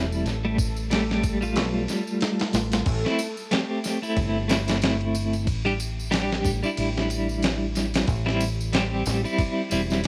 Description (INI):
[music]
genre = trip hop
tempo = 92 BPM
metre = 4/4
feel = swing 57% on 16ths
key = A minor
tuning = A4 = 440 Hz
[part]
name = clean electric guitar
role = accompaniment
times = 0.0-10.1 s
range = G3 to G4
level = -28 LUFS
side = equal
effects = tremolo, vintage 12-bit sampler grit, cassette tape, tape echo
[part]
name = deep dub fingered electric bass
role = bass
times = 0.0-10.1 s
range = E1 to B1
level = -30 LUFS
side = equal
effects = none
[part]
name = backwards swelling texture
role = texture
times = 0.1-2.9 s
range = A3 to A4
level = -40 LUFS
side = equal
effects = built-in reverb, cassette tape
[part]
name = tambourine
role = percussion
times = 0.1-10.1 s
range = none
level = -40 LUFS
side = equal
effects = none
[part]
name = dusty soul sampler-style drum kit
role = drums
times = 0.3-10.1 s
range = crash cymbal, kick drum, ride cymbal, snare drum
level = -30 LUFS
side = equal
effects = vintage 12-bit sampler grit
[sound]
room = light reverb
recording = home recording on cassette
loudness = -25 LUFS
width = mono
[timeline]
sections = 0.0-2.9 A section; 2.9-10.1 B section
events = none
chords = 0.3 Fadd9/A; 2.9 Am; 5.5 Em7/A; 8.1 C/A